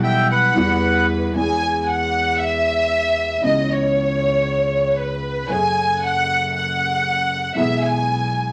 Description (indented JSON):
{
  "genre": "tango",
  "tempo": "116 BPM",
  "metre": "4/4",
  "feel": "rubato",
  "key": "E major",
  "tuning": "A4 = 440 Hz",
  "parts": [
    { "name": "bandoneon", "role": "melody", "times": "0.0-1.1 s", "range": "B4 to G5", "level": "-20 LUFS", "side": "equal", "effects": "none" },
    { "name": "warm studio violin section", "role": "second line", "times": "0.0-8.5 s", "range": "B4 to G#5", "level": "-22 LUFS", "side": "equal", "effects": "none" },
    { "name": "warm concert grand piano", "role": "accompaniment", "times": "0.0-8.5 s", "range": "B1 to G#4", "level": "-26 LUFS", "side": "equal", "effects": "none" },
    { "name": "clear double bass", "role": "bass", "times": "0.0-8.5 s", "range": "F#1 to E2", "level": "-28 LUFS", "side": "equal", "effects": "none" }
  ],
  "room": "wet studio reverb, RT60 0.6 s",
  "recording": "vinyl crackle",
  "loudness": "-19 LUFS",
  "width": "mono",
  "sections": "0.0-1.4 A section; 1.4-8.5 B section",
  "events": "violin section solo 1.4-8.5",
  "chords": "0.0 Emadd9; 1.4 E; 3.4 C#m7; 5.5 F#madd9; 7.6 E/B"
}